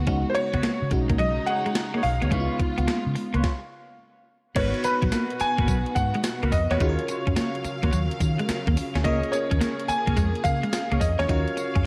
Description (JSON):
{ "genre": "R&B, new jack swing", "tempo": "107 BPM", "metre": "4/4", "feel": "swing 66% on 16ths", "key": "Eb minor", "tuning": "A4 = 440 Hz", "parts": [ { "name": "FM electric piano with soft pad layer", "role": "accompaniment", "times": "0.0-11.9 s", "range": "Ab3 to Cb5", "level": "-34 LUFS", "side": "equal", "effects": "chorus, phaser" }, { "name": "warm symphonic string section", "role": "sustained chords", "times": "0.0-11.9 s", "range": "Cb3 to F5", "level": "-37 LUFS", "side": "equal", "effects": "none" }, { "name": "electric guitar at the edge of break-up", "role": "riff", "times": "0.0-11.8 s", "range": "F#3 to Eb4", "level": "-33 LUFS", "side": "equal", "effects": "subtle chorus" }, { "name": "vintage muted fingered electric bass", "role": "bass", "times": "0.0-11.8 s", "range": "Ab1 to Eb3", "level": "-29 LUFS", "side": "equal", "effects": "none" }, { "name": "gated 80s digital drum machine", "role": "drums", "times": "0.1-11.8 s", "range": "crash cymbal, hi-hat, kick drum, snare drum, tambourine", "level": "-30 LUFS", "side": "equal", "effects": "gated reverb, gated reverb snare" }, { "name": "clear concert grand piano", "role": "melody", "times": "0.3-11.9 s", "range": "Cb5 to Ab5", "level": "-30 LUFS", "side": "equal", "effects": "delay" }, { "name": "dark horn section", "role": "stabs", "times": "0.5-11.8 s", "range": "D#4 to F5", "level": "-38 LUFS", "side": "equal", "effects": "none" } ], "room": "light reverb", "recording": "lossy compression artefacts", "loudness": "-25 LUFS", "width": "mono", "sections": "0.0-4.6 A section; 4.6-11.9 B section", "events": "stop 3.4-4.6", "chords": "0.1 Db7sus4; 0.9 B69; 2.3 Db7; 4.6 Abm9; 6.8 Ebm9; 9.0 Bbm7/Db; 11.3 Ebm9", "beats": "| 0.08 0.64 1.20 1.76 | 2.32 2.88 3.44 4.00 | 4.56 5.12 5.68 6.24 | 6.80 7.37 7.93 8.49 | 9.05 9.61 10.17 10.73 | 11.29 11.85" }